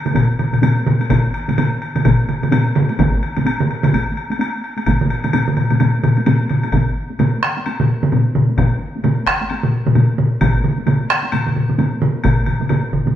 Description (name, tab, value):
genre	japanese traditional, taiko drum ensemble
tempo	129 BPM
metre	4/4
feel	swing 60% on 16ths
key	none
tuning	none
part	solo taiko drums	percussion	0.1-13.2 s	none	-18 LUFS	right 3 dB	none
part	taiko ensemble	percussion	0.1-13.1 s	none	-24 LUFS	equal	none
part	taiko ensemble	percussion	0.1-13.1 s	none	-19 LUFS	left 3 dB	none
part	woodblock	percussion	0.1-12.8 s	none	-26 LUFS	left 3 dB	none
part	taiko ensemble	percussion	0.2-13.1 s	none	-23 LUFS	equal	none
room	wet stone room reverb, RT60 1.3 s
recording	band playing live in one room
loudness	-14 LUFS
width	side -11 dB against mid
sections	0.0-6.7 A section; 6.7-13.2 B section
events	speeding up 0.0-13.2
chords	none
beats	0.16 0.63 | 1.10 1.58 2.05 2.52 | 2.99 3.46 3.93 4.40 | 4.87 5.33 5.80 6.26 | 6.73 7.19 7.66 8.12 | 8.58 9.04 9.50 9.96 | 10.42 10.88 11.34 11.79 | 12.25 12.70